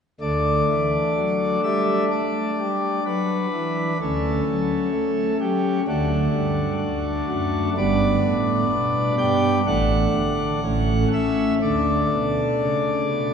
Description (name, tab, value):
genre	classical, chorale-style piece for pipe organ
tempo	63 BPM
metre	4/4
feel	straight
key	D major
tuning	A4 = 440 Hz
part	pipe organ, principal chorus	solo	0.2-13.3 s	G1 to G5	-19 LUFS	equal	none
room	wet church reverb, RT60 3.3 s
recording	heard from further back in the room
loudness	-19 LUFS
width	side -7 dB against mid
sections	0.2-13.3 A section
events	none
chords	0.2 D; 4.0 A/D; 5.9 D; 7.8 G; 9.7 D/A; 10.6 A; 11.6 D5